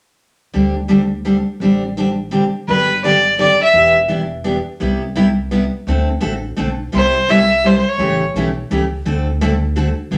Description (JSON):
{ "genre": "acoustic string swing (jazz manouche)", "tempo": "169 BPM", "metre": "3/4", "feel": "swing 60% on 8ths", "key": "unclear", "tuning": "A4 = 441 Hz", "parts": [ { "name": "picked steel-string acoustic guitar", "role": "accompaniment", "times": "0.5-10.2 s", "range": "C3 to A4", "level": "-19 LUFS", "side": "equal", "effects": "none" }, { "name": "upright bass", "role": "bass", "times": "0.5-10.2 s", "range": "E1 to D2", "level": "-25 LUFS", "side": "equal", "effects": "none" }, { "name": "warm violin", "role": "melody", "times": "2.7-3.9, 7.0-8.2 s", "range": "B4 to E5", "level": "-15 LUFS", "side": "equal", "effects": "none" } ], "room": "wet studio reverb, RT60 0.6 s", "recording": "none", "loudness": "-16 LUFS", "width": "mono", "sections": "0.5-2.7 A section; 2.7-10.2 B section", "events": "none", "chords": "0.5 D7sus4; 2.7 Gmaj7; 3.7 Em7; 4.8 Cmaj7; 5.9 D7; 6.9 Cmaj7; 8.0 A7; 9.1 D7", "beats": "| 0.54 0.90 1.25 | 1.61 1.97 2.32 | 2.67 3.03 3.38 | 3.74 4.09 4.45 | 4.80 5.16 5.51 | 5.87 6.22 6.58 | 6.93 7.28 7.64 | 7.99 8.35 8.70 | 9.05 9.41 9.76 | 10.12" }